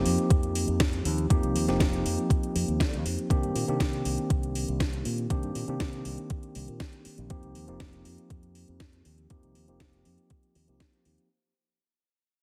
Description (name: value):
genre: nu-disco, nu disco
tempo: 120 BPM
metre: 4/4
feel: straight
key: unclear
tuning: A4 = 440 Hz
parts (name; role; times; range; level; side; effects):
- tine electric piano; accompaniment; 0.0-11.3 s; Eb3 to G4; -34 LUFS; equal; low-pass filter, dub echo
- fingered electric bass with an envelope filter; bass; 0.1-11.2 s; F1 to D3; -34 LUFS; equal; none
- house drum kit; drums; 0.1-11.3 s; hi-hat, snare drum; -36 LUFS; equal; overdrive
- electronic kick drum; drums; 0.3-10.9 s; none; -29 LUFS; equal; overdrive
room: light reverb, digital ambience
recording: heavily compressed radio sound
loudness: -28 LUFS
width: mono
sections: 0.0-11.3 A section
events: fade-out 0.0-11.3; filter sweep on tine electric piano 0.0-11.3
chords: 0.0 F9sus4; 3.3 Cm9; 7.3 F9sus4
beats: 0.30 0.80 | 1.30 1.80 2.30 2.80 | 3.30 3.80 4.30 4.80 | 5.30 5.80 6.30 6.80 | 7.30 7.80 8.30 8.80 | 9.30 9.80 10.30 10.80